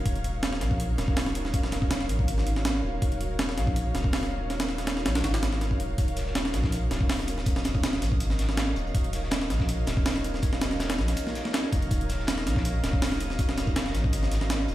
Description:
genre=drum and bass, jungle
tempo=162 BPM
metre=4/4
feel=straight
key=Eb minor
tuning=A4 = 440 Hz
part: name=soft dub sub bass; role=bass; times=0.0-14.7 s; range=Eb1 to Bb1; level=-29 LUFS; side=equal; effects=none
part: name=breakbeat sampler-style drum kit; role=drums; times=0.1-14.6 s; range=hi-hat, kick drum, snare drum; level=-27 LUFS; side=equal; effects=none
part: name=crunchy breakbeat drum kit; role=drums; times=6.0-14.7 s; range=hi-hat, snare drum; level=-40 LUFS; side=left 5 dB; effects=high-pass filter on hats, high-pass filter on snare, high-pass filter on room
part: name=drifting glass-harmonics texture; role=texture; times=6.8-14.7 s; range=Eb5 to Ab6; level=-42 LUFS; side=equal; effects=chorus, built-in reverb
room=light reverb, studio reverb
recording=played on a big sound system in a bare room, large studio reverb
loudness=-24 LUFS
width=side -14 dB against mid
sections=0.0-14.7 A section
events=none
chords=0.0 Ebm7

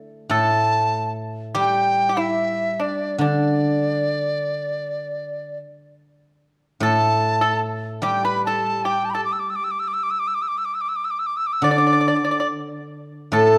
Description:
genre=chinese traditional, Chinese chamber ensemble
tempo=74 BPM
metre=4/4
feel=straight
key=D zhi mode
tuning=A4 = 440 Hz
part: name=guzheng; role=accompaniment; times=0.0-13.6 s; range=A2 to A4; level=-27 LUFS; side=equal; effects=none
part: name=reedy large dizi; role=melody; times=0.3-13.6 s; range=D5 to E6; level=-24 LUFS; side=equal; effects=none
part: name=pipa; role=second line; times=0.3-13.6 s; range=D4 to D5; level=-27 LUFS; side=equal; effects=none
part: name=xiao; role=second line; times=13.4-13.6 s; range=A4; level=-16 LUFS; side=equal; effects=none
room=moderate recital hall reverb, RT60 1.9 s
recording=dark, warm production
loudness=-22 LUFS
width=mono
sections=0.0-12.9 A section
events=none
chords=none

